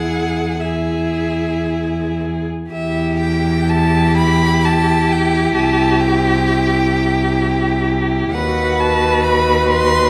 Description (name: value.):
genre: classical, slow romantic movement for string quartet.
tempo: 55-66 BPM.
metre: 3/4.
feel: rubato.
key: E minor.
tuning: A4 = 440 Hz.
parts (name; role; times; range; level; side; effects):
rich violin; melody; 0.0-10.1 s; E5 to C6; -24 LUFS; equal; none.
rich violin; second line; 0.0-10.1 s; G4 to B4; -22 LUFS; equal; none.
warm viola; accompaniment; 0.0-10.1 s; E4 to F#4; -22 LUFS; equal; none.
rich cello; bass; 0.0-10.1 s; C2 to E2; -21 LUFS; equal; none.
room: wet recital hall reverb, RT60 1.3 s.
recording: none.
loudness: -16 LUFS.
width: mono.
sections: 0.0-2.7 A section; 2.7-10.1 B section.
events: none.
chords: 0.0 E; 5.6 C; 8.3 B/D#.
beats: 0.61 1.65 | 2.70 3.69 4.63 | 5.56 6.47 7.40 | 8.33 9.25.